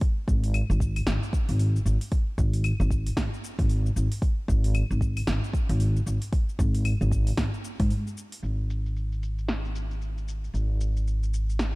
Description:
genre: organic downtempo.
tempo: 114 BPM.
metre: 4/4.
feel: swing 60% on 16ths.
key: unclear.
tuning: A4 = 442 Hz.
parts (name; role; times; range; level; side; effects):
deep house drum kit; drums; 0.0-11.7 s; claves, hi-hat, shaker, snare drum; -34 LUFS; equal; overdrive, low-pass filter on perc, low-pass filter on hats, low-pass filter on snare.
electronic kick drum; drums; 0.0-7.9 s; none; -26 LUFS; equal; none.
upright bass; bass; 0.3-11.8 s; G#1 to G#2; -25 LUFS; equal; sidechain pumping.
room: little or no reverb.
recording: dark, warm production.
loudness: -24 LUFS.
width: side -23 dB against mid.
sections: 0.0-8.4 A section; 8.4-11.8 B section.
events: break 7.9-8.4; filter sweep on drum 8.4-11.8.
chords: none.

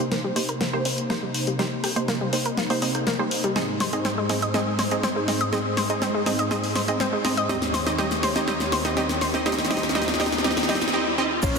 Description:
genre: progressive house.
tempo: 122 BPM.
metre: 4/4.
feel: straight.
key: unclear.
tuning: A4 = 440 Hz.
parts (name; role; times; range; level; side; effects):
warm analog pad; sustained chords; 0.0-11.6 s; Eb2 to Eb5; -30 LUFS; equal; chorus, sidechain pumping.
wide unison pluck; stabs; 0.0-11.5 s; Bb3 to Eb5; -27 LUFS; right 3 dB; sidechain pumping, ping-pong delay.
deep house drum kit; drums; 0.0-11.5 s; crash cymbal, hi-hat, rim click, snare drum; -26 LUFS; left 1 dB; none.
analog pluck; arpeggios; 0.1-11.6 s; G3 to Eb5; -28 LUFS; left 1 dB; chorus, sidechain pumping, ping-pong delay.
riser and impact; sound effects; 7.5-11.6 s; none; -34 LUFS; left 1 dB; none.
soft octave-layered synth lead; melody; 11.4-11.6 s; Db5; -26 LUFS; left 3 dB; chorus, phaser.
round analog bass; bass; 11.4-11.6 s; Bb1; -30 LUFS; equal; sidechain pumping.
electronic kick drum; drums; 11.4-11.5 s; none; -24 LUFS; equal; none.
tube shaker; percussion; 11.4-11.6 s; none; -32 LUFS; right 4 dB; none.
room: wet huge ambient reverb, RT60 4.9 s.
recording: dense, heavily limited modern master, faint mains hum.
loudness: -21 LUFS.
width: side -5 dB against mid.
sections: 0.0-11.4 A section.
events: build-up 0.0-11.4; drum fill 0.0-10.9; filter sweep on synth arpeggio sound 0.0-11.4; filter sweep on synth pluck 0.0-11.4; impact 11.4.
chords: 0.0 Cm7; 3.6 Ab; 7.5 Eb7.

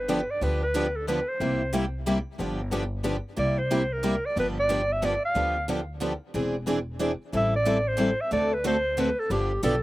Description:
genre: acoustic string swing (jazz manouche).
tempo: 182 BPM.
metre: 3/4.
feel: swing 61% on 8ths.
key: G mixolydian.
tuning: A4 = 440 Hz.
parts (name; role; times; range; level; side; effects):
breathy clarinet; melody; 0.0-9.8 s; G4 to F5; -26 LUFS; equal; slapback echo.
upright bass; bass; 0.0-9.8 s; E1 to D2; -31 LUFS; equal; none.
picked steel-string acoustic guitar; accompaniment; 0.1-9.7 s; C3 to A4; -30 LUFS; left 3 dB; none.
picked steel-string acoustic guitar; accompaniment; 0.1-9.7 s; C3 to D5; -30 LUFS; right 4 dB; none.
room: little or no reverb.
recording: recorded outdoors, with no room sound.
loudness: -24 LUFS.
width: side -17 dB against mid.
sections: 0.0-9.8 A section.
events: none.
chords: 0.0 G7; 1.4 C7; 2.4 G7; 3.4 C7; 4.4 G7; 6.3 Eaug7; 7.3 Am7; 8.3 D7; 9.3 G7.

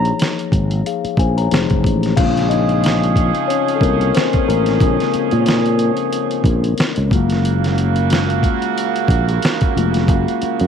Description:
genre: R&B, neo-soul.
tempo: 91 BPM.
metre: 4/4.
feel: swing 56% on 16ths.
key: Bb minor.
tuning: A4 = 437 Hz.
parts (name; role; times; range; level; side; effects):
mellow tine electric piano; accompaniment; 0.0-10.7 s; Db3 to Bb5; -20 LUFS; left 12 dB; medium stereo tremolo.
sustaining fretless electric bass; bass; 0.0-10.7 s; F1 to Bb2; -17 LUFS; right 1 dB; none.
dusty soul sampler-style drum kit; drums; 0.1-10.7 s; crash cymbal, hi-hat, kick drum, snare drum; -19 LUFS; equal; none.
warm horn section; stabs; 2.2-10.7 s; Db3 to Ab4; -21 LUFS; right 16 dB; none.
room: digital ambience.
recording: 1960s-style stereo with parts hard left and right, vinyl crackle.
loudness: -14 LUFS.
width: side -8 dB against mid.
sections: 0.0-2.2 A section; 2.2-10.7 B section.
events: tine electric piano solo 2.2-10.7.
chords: 0.0 Bbm7; 1.5 Fm7; 2.2 Bbm9; 7.1 Gbmaj9.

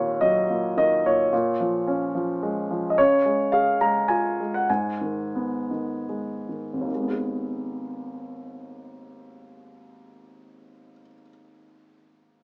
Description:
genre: classical, lyrical solo piano.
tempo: 70-112 BPM.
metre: 3/4.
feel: rubato.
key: G# dorian.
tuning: A4 = 440 Hz.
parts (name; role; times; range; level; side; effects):
warm grand piano; solo; 0.0-12.4 s; G#1 to A#5; -25 LUFS; equal; none.
room: light reverb.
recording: small speaker sound.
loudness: -24 LUFS.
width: mono.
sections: 0.0-6.9 A section; 6.9-12.0 B section.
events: slowing down 3.0-6.9.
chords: 0.0 D#m; 1.3 A#m7; 3.0 C#; 4.7 G#m.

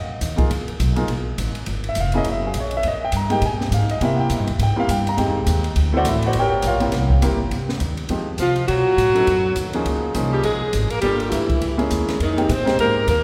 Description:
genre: jazz, small-group swing and bop.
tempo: 205 BPM.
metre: 4/4.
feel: swing 60% on 8ths.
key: F minor.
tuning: A4 = 444 Hz.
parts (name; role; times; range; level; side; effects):
warm baby grand piano; accompaniment; 0.0-13.1 s; F3 to Bb5; -25 LUFS; equal; none.
upright bass; bass; 0.0-13.2 s; F1 to C3; -25 LUFS; equal; none.
open jazz drum kit; drums; 0.2-13.2 s; hi-hat, kick drum, ride cymbal, snare drum; -30 LUFS; equal; none.
warm alto saxophone; melody; 8.4-13.2 s; Eb4 to C5; -23 LUFS; equal; none.
edgy tenor saxophone; second line; 8.4-13.2 s; Eb3 to C4; -30 LUFS; equal; none.
room: wet church reverb, RT60 2.7 s.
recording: recorded in a church or concert hall.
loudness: -20 LUFS.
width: mono.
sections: 0.0-7.5 A section; 7.5-13.2 B section.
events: none.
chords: 0.0 N.C.; 0.5 Db5; 1.7 Gm7; 2.3 Gb; 2.8 Fm11; 4.0 C7; 5.2 Fm7; 5.8 D7; 6.3 Gm7b5; 6.9 C7; 7.5 Fm7; 8.7 B9; 9.9 Db69; 11.0 Gm7; 11.6 Dbm69; 12.2 Fm11.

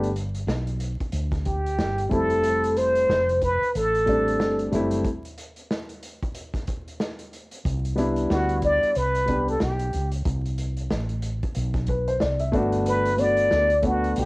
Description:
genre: hip hop, jazz-hop.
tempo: 92 BPM.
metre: 4/4.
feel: swing 59% on 16ths.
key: unclear.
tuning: A4 = 440 Hz.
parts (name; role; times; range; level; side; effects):
dark concert grand piano; accompaniment; 0.0-14.3 s; G3 to E5; -25 LUFS; left 1 dB; cassette tape.
woody fretless electric bass; bass; 0.0-14.3 s; F1 to D2; -27 LUFS; equal; none.
vintage drum kit; drums; 0.0-14.3 s; hi-hat, kick drum, snare drum; -31 LUFS; equal; none.
trumpet with plunger mute; melody; 1.5-14.3 s; F#4 to D5; -22 LUFS; equal; cassette tape.
room: light reverb, studio reverb.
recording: home recording on cassette, vinyl crackle.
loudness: -21 LUFS.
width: side -24 dB against mid.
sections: 0.0-14.3 A section.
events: break 5.0-7.7.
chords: 0.0 G; 2.1 Fmaj9; 7.7 Cmaj9; 12.5 Gmaj9.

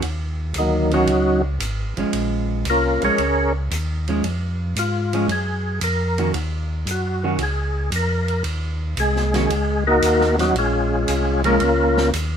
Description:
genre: soul jazz organ trio.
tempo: 114 BPM.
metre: 4/4.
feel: swing 69% on 8ths.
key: Bb minor.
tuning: A4 = 440 Hz.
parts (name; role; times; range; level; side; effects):
mellow tonewheel organ; bass; 0.0-12.4 s; Ab1 to Ab2; -23 LUFS; equal; slow rotary speaker.
vintage drum kit; drums; 0.0-12.3 s; hi-hat, ride cymbal, snare drum; -30 LUFS; right 2 dB; none.
percussive tonewheel organ; melody; 0.6-12.1 s; Eb3 to Db5; -19 LUFS; left 1 dB; slow rotary speaker, overdrive, chorus vibrato.
hollow-body jazz guitar; accompaniment; 0.9-11.6 s; Eb3 to Gb4; -24 LUFS; right 3 dB; none.
room: light reverb.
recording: minimal, uncompressed stereo recording.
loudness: -18 LUFS.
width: side -8 dB against mid.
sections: 0.0-12.4 A section.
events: tonewheel organ solo 0.0-12.4.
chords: 0.0 Ebm7; 2.1 Bbm7; 6.3 Ebm7; 10.6 Bbm7.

